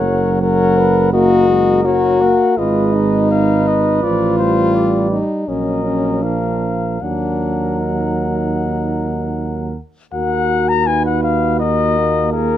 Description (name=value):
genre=classical, brass quintet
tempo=76-84 BPM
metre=4/4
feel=rubato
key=Eb minor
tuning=A4 = 436 Hz
part: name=mellow trumpet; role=melody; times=0.0-12.6 s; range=Bb4 to Bb5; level=-21 LUFS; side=left 7 dB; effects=none
part: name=mellow flugelhorn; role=second line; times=0.0-12.6 s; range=Ab4 to Db5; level=-23 LUFS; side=right 3 dB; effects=none
part: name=warm French horn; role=accompaniment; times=0.0-12.6 s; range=Db4 to Bb4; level=-18 LUFS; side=left 3 dB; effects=none
part: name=warm euphonium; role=accompaniment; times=0.0-12.6 s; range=F3 to Gb4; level=-22 LUFS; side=right 3 dB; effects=none
part: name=dark tuba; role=bass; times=0.0-12.6 s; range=Gb1 to Eb2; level=-19 LUFS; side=right 4 dB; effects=none
room=little or no reverb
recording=close, detailed microphones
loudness=-13 LUFS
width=side -11 dB against mid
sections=0.0-10.1 A section; 10.1-12.6 B section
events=none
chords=0.0 Gb; 2.6 Abm; 4.0 F/A; 5.5 Ebm/Bb; 6.2 Bb; 7.0 Ebm